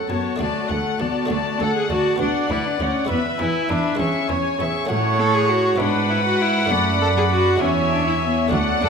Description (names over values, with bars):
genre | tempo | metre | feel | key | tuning
classical, baroque-style concerto movement with solo episodes | 67 BPM (dotted quarters) | 6/8 | straight | unclear | A4 = 440 Hz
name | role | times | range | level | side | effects
warm chamber violin section | melody | 0.0-8.9 s | D5 to C#6 | -28 LUFS | left 7 dB | none
warm chamber violin section | second line | 0.0-8.9 s | A4 to F#5 | -25 LUFS | left 6 dB | none
buff-stop harpsichord | accompaniment | 0.0-8.9 s | D2 to F#4 | -29 LUFS | equal | none
dark chamber viola section | accompaniment | 0.0-8.9 s | F#4 to E5 | -25 LUFS | right 6 dB | none
rich cello | melody | 0.1-8.9 s | A3 to A4 | -23 LUFS | left 1 dB | none
warm chamber cello section | bass | 0.1-8.9 s | D2 to A2 | -25 LUFS | right 3 dB | none
room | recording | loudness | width
moderate concert hall reverb, RT60 2.4 s | none | -18 LUFS | side -6 dB against mid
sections
0.0-8.9 A section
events
none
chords
0.4 D; 2.2 Bm/D; 3.1 E; 4.0 C#m/E; 4.9 F#m/A; 5.8 E/G#; 6.7 D/F#; 7.6 C#m/E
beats
0.41 | 1.31 2.21 | 3.10 4.00 | 4.90 5.80 | 6.71 7.61 | 8.52